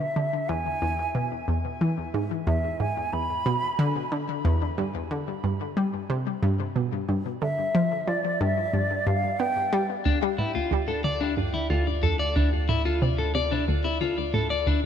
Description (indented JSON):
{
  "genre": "ambient, sequencer-driven space music",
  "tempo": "91 BPM",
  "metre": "4/4",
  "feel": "straight",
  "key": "D minor from 10.1 s",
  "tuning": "A4 = 438 Hz",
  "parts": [
    { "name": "hollow concert flute", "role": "melody", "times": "0.0-9.9 s", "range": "D5 to B5", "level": "-30 LUFS", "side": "right 1 dB", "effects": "shimmer reverb, ping-pong delay" },
    { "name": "analog pluck", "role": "riff", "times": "0.2-14.8 s", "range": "D2 to B3", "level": "-26 LUFS", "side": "equal", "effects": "chorus, ping-pong delay" },
    { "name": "electric guitar at the edge of break-up", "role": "arpeggios", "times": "10.1-14.8 s", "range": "D4 to D5", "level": "-26 LUFS", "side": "left 3 dB", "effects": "auto-pan, shimmer reverb, ping-pong delay" },
    { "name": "round analog bass", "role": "bass", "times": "10.1-14.9 s", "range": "D2", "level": "-30 LUFS", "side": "right 1 dB", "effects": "none" }
  ],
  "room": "moderate plate reverb, RT60 3.4 s",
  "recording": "none",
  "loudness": "-24 LUFS",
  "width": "side -8 dB against mid",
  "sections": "0.0-10.1 A section; 10.1-14.9 B section",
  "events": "filter sweep on synth arpeggio sound 10.1-14.9",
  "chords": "0.0 E; 4.8 N.C.; 10.1 Dm"
}